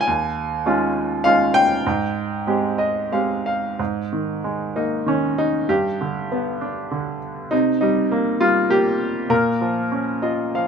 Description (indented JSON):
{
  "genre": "classical, lyrical solo piano",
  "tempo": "88-104 BPM",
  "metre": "3/4",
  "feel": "rubato",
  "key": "Ab major",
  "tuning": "A4 = 439 Hz",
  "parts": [
    { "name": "clear baby grand piano", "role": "solo", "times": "0.0-10.7 s", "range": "Eb2 to Ab5", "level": "-18 LUFS", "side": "equal", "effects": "none" }
  ],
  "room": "moderate studio reverb, RT60 0.6 s",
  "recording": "minimal, uncompressed stereo recording",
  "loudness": "-18 LUFS",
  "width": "side -6 dB against mid",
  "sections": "0.0-3.8 A section; 3.8-10.7 B section",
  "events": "grand piano fill 2.5-3.8, 9.9-10.7",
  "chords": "0.1 Eb9sus4; 1.9 Abmaj7; 3.8 Absus2; 5.7 G; 7.5 Cm7; 9.3 Bbm",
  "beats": "| 0.07 0.66 1.25 | 1.86 2.47 3.12 | 3.80 4.44 5.07 | 5.69 6.31 6.92 | 7.52 8.11 8.70 | 9.30 9.92 10.54"
}